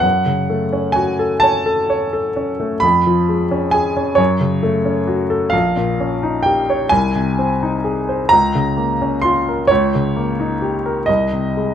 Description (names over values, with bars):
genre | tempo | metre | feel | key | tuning
classical, romantic nocturne for solo piano | 43 BPM (dotted quarters) | 6/8 | rubato | Ab major from 5.5 s | A4 = 442 Hz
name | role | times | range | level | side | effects
clear grand piano | solo | 0.0-11.7 s | Bb1 to C6 | -14 LUFS | equal | none
room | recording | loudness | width
light reverb | none | -15 LUFS | side -9 dB against mid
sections
0.0-11.7 A section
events
none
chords
0.0 F#m; 2.8 C#7/E#; 4.2 F#m; 5.5 Eb7/Bb; 6.9 Ab/C; 8.3 Bbm/Db; 9.7 Eb7/Db; 11.1 Ab/C